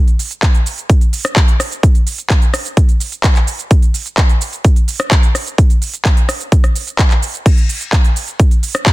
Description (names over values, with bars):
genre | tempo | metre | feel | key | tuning
EDM | 128 BPM | 4/4 | straight | none | none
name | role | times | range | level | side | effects
big-room dance drum kit | drums | 0.1-8.9 s | crash cymbal, handclaps, hi-hat, rim click, shaker | -18 LUFS | equal | none
electronic kick drum | drums | 0.4-8.9 s | none | -10 LUFS | equal | overdrive
room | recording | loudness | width
digital ambience | dense, heavily limited modern master | -11 LUFS | side -19 dB against mid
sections
0.0-8.9 A section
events
none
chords
none